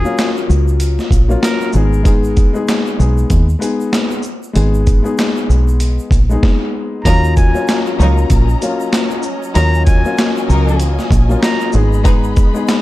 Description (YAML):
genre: hip hop, boom-bap hip-hop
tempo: 96 BPM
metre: 4/4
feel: swing 59% on 16ths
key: Eb minor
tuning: A4 = 440 Hz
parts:
  - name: trumpet with straight mute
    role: melody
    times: 0.0-1.7, 7.0-11.7 s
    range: Ab4 to Bb5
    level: -23 LUFS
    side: equal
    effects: plate reverb, ping-pong delay
  - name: dark upright piano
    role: accompaniment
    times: 0.0-12.8 s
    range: Gb3 to Ab4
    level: -19 LUFS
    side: left 4 dB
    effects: plate reverb
  - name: deep dub fingered electric bass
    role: bass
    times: 0.0-12.5 s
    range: Ab1 to Eb2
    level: -13 LUFS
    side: equal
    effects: none
  - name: egg shaker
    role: percussion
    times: 0.1-12.8 s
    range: none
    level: -39 LUFS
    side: right 5 dB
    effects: none
  - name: boom bap sampler-style drum kit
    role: drums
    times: 0.2-12.8 s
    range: handclaps, hi-hat, kick drum, shaker, snare drum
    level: -15 LUFS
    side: equal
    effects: none
  - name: warm studio string section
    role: sustained chords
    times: 7.0-12.8 s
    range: Gb3 to Cb6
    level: -26 LUFS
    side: equal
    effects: plate reverb
  - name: rich studio string section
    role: stabs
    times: 7.1-12.2 s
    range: Gb3 to Cb5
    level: -23 LUFS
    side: equal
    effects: plate reverb, ping-pong delay
room: little or no reverb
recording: dark, warm production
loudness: -11 LUFS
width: side -16 dB against mid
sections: 0.0-7.1 A section; 7.1-12.8 B section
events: stop 6.4-7.1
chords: 0.0 Ebm7 (rootless); 1.7 Abm; 7.1 Ebm7; 11.7 Abm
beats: 0.18 0.80 1.43 | 2.05 2.68 3.30 3.93 | 4.55 5.18 5.80 6.43 | 7.05 7.68 8.30 8.93 | 9.55 10.18 10.80 11.43 | 12.05 12.68